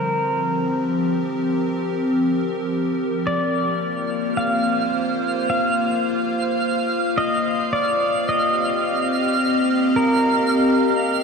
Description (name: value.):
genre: ambient.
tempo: 54 BPM.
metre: 4/4.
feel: straight.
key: unclear.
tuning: A4 = 436 Hz.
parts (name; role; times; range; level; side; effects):
pedal steel guitar; melody; 0.0-11.2 s; Bb4 to F5; -23 LUFS; equal; diffuse ambient delay.
evolving wavetable pad; sustained chords; 0.0-11.2 s; D3 to F5; -21 LUFS; left 1 dB; chorus, built-in reverb.
twinkling granular texture; texture; 3.6-11.2 s; F6; -26 LUFS; right 4 dB; built-in reverb.
room: wet cathedral reverb, RT60 6.7 s.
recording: dark, warm production.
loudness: -18 LUFS.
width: side -5 dB against mid.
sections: 0.0-11.2 A section.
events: fade-in on ambient pad 0.0-11.2.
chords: 0.0 Fsus4; 3.3 Bb; 7.7 Cm7.